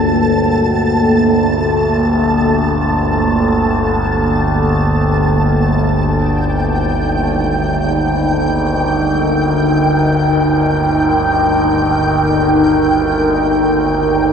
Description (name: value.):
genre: dark ambient drone.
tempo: free time.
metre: none.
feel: none.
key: unclear.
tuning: A4 = 440 Hz.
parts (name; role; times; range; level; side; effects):
deep dark ambient pad; sustained chords; 0.0-14.3 s; Bb3 to G5; -15 LUFS; equal; chorus, built-in reverb.
overtone-sweeping drone; drone; 0.0-14.3 s; G1 to D2; -16 LUFS; equal; chorus, built-in reverb.
flickering grainy texture; texture; 0.0-14.3 s; G5 to A5; -21 LUFS; right 1 dB; built-in reverb.
room: wet huge ambient reverb, RT60 8.7 s.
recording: dreamy mix soaked in reverb.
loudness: -12 LUFS.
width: side -7 dB against mid.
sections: 0.0-14.3 A section.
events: none.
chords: 0.0 Gmadd9; 5.9 Eb.